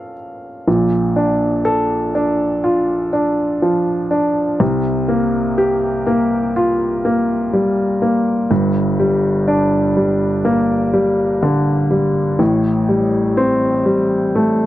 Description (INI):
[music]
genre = pop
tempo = 61 BPM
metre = 4/4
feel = straight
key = unclear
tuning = A4 = 440 Hz
[part]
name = warm baby grand piano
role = solo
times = 0.0-14.7 s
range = G1 to F5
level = -14 LUFS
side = equal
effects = none
[sound]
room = little or no reverb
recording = dry, close 1970s-style studio recording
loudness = -14 LUFS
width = side -14 dB against mid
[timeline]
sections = 0.7-14.7 A section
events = none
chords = 0.0 Bbm; 0.7 Bbmaj7; 4.6 C7sus4; 8.5 Gm; 12.4 Fadd9/A (rootless)